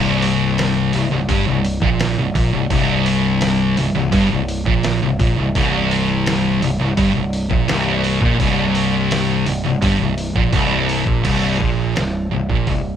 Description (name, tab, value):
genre	stoner and doom metal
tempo	84 BPM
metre	4/4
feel	straight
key	unclear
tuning	A4 = 438 Hz
part	thick fuzz guitar	riff	0.0-13.0 s	C2 to Bb2	-20 LUFS	left 6 dB	distortion
part	thick fuzz guitar	riff	0.0-13.0 s	C2 to Bb2	-20 LUFS	right 5 dB	distortion
part	overdriven picked electric bass	bass	0.0-13.0 s	C1 to Bb1	-24 LUFS	right 1 dB	none
part	trip hop sampler-style drum kit	drums	0.2-12.8 s	crash cymbal, hi-hat, kick drum, snare drum	-22 LUFS	right 1 dB	none
room	moderate studio reverb, RT60 0.6 s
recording	band playing live in one room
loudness	-15 LUFS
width	side -9 dB against mid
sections	0.0-11.2 A section; 11.2-13.0 B section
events	kick and snare drop out 9.8-11.2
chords	0.0 C5; 11.2 C7(no3)